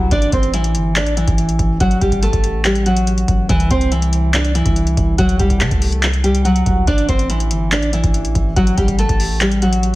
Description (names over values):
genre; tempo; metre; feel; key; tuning
hip hop, trap; 142 BPM; 4/4; half-time; A dorian; A4 = 440 Hz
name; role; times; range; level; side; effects
nylon-string guitar; melody; 0.0-10.0 s; E3 to D5; -17 LUFS; equal; low-pass filter, digital delay
long sustained 808-style bass; bass; 0.0-10.0 s; G1 to C3; -18 LUFS; equal; none
booming analog drum machine; drums; 0.1-9.9 s; handclaps, hi-hat, kick drum; -18 LUFS; equal; none
room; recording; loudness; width
light reverb, small room ambience; heavily compressed radio sound, multiband compression; -13 LUFS; side -18 dB against mid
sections
0.1-10.0 A section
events
none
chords
0.1 A5; 3.5 C; 6.9 A5